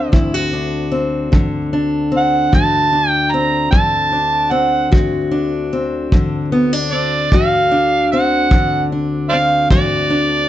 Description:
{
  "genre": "acoustic country blues, solo or duo",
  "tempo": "50 BPM (dotted quarters)",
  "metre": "12/8",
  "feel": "straight",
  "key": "unclear",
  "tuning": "A4 = 440 Hz",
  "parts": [
    { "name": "overdriven harmonica", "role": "melody", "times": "0.0-10.5 s", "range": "C5 to Bb5", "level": "-15 LUFS", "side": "right 2 dB", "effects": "none" },
    { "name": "fingerpicked acoustic archtop guitar", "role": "accompaniment", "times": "0.0-10.5 s", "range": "D2 to F#4", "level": "-17 LUFS", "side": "left 2 dB", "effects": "none" },
    { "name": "kick drum", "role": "drums", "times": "0.1-9.9 s", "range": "none", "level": "-15 LUFS", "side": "equal", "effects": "none" }
  ],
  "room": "moderate studio reverb, RT60 0.8 s",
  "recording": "nothing above 8.0 kHz",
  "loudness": "-13 LUFS",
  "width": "side -12 dB against mid",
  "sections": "0.0-10.5 A section",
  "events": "none",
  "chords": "0.0 D7",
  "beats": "0.13 1.33 | 2.53 3.73 4.92 6.12 | 7.31 8.50 9.70"
}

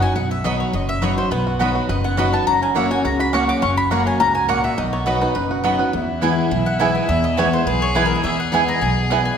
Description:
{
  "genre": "bluegrass",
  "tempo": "208 BPM",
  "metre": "4/4",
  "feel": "straight",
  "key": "unclear",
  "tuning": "A4 = 440 Hz",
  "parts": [
    { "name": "mandolin", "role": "melody", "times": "0.0-9.4 s", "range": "A#4 to D6", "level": "-23 LUFS", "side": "left 2 dB", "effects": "none" },
    { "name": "picked steel-string acoustic guitar", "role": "accompaniment", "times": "0.0-9.4 s", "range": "E2 to F#4", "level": "-22 LUFS", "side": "left 2 dB", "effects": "none" },
    { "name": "upright bass", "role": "bass", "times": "0.0-9.3 s", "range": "F#1 to E2", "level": "-24 LUFS", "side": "right 1 dB", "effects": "none" },
    { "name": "mandolin", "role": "stabs", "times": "0.4-9.2 s", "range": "A#3 to B5", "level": "-23 LUFS", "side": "right 4 dB", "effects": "none" },
    { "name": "bluegrass banjo", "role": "melody", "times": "1.3-9.2 s", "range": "F#3 to B4", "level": "-27 LUFS", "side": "right 3 dB", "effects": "none" },
    { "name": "clear fiddle", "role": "second line", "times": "5.9-9.4 s", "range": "E4 to G#4", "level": "-23 LUFS", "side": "left 1 dB", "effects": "none" }
  ],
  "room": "wet scoring stage reverb, RT60 1.6 s",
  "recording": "recorded in a church or concert hall",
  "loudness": "-16 LUFS",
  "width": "side -7 dB against mid",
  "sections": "0.0-5.9 A section; 5.9-9.4 B section",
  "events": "none",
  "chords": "0.0 B; 2.5 F#; 4.8 B; 5.9 E",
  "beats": "| 0.16 0.45 0.74 1.02 | 1.31 1.60 1.89 2.18 | 2.47 2.76 3.05 3.34 | 3.62 3.91 4.20 4.49 | 4.78 5.07 5.36 5.64 | 5.93 6.22 6.51 6.80 | 7.09 7.38 7.67 7.95 | 8.24 8.53 8.82 9.11"
}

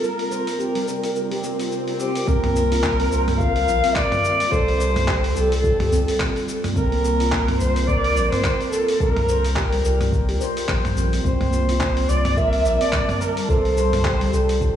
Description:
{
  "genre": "organic downtempo",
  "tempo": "107 BPM",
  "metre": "4/4",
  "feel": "swing 58% on 16ths",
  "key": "unclear",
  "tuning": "A4 = 440 Hz",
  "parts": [
    { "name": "dark kamancheh", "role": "melody", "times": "0.0-14.6 s", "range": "G4 to F5", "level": "-23 LUFS", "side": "equal", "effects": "digital delay" },
    { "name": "ethereal airy pad", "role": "sustained chords", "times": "0.0-14.8 s", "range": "C3 to A5", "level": "-30 LUFS", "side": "equal", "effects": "ensemble chorus, built-in reverb, vintage 12-bit sampler grit, sidechain pumping" },
    { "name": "handpan", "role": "arpeggios", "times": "0.0-14.5 s", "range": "G3 to C5", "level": "-26 LUFS", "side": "right 1 dB", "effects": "digital delay" },
    { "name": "dusty soul sampler-style drum kit", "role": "drums", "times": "0.0-14.7 s", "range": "handclaps, hi-hat, shaker, toms", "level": "-28 LUFS", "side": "equal", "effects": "none" },
    { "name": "swell", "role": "sound effects", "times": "1.4-2.3 s", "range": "none", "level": "-33 LUFS", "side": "left 2 dB", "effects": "none" },
    { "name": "warm sub bass", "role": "bass", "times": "2.3-14.8 s", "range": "Bb1 to C2", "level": "-22 LUFS", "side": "equal", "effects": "tube saturation, sidechain pumping" },
    { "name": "electronic kick drum", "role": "drums", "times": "2.3-14.7 s", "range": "none", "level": "-25 LUFS", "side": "equal", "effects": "none" }
  ],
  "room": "moderate lush hall reverb, RT60 2.5 s",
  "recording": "played on a big sound system in a bare room, large studio reverb, small room ambience",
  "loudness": "-18 LUFS",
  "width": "side -10 dB against mid",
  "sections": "0.0-2.3 A section; 2.3-14.8 B section",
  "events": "filter sweep on handpan 0.0-2.3; swell 1.4-2.3",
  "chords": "0.0 Gm7/C; 2.3 C7sus4; 4.5 F/C; 6.8 C7sus4; 13.5 F/C",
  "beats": "| 0.03 0.59 1.15 1.71 | 2.27 2.83 3.40 3.96 | 4.52 5.08 5.64 6.20 | 6.76 7.32 7.88 8.44 | 9.00 9.56 10.12 10.69 | 11.24 11.81 12.37 12.93 | 13.49 14.05 14.61"
}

